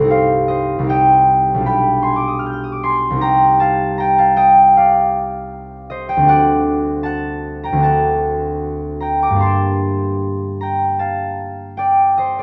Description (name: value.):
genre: classical, solo harp piece.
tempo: 77 BPM.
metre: 4/4.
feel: rubato.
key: G minor.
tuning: A4 = 440 Hz.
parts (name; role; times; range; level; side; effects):
concert harp; solo; 0.0-12.4 s; B1 to G6; -16 LUFS; equal; none.
room: moderate stone room reverb, RT60 1.0 s.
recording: close, detailed microphones.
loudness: -16 LUFS.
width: mono.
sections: 0.0-12.4 A section.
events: none.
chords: 0.1 Cm; 1.6 G7/B; 3.2 Cm; 6.3 D7; 9.4 Gm.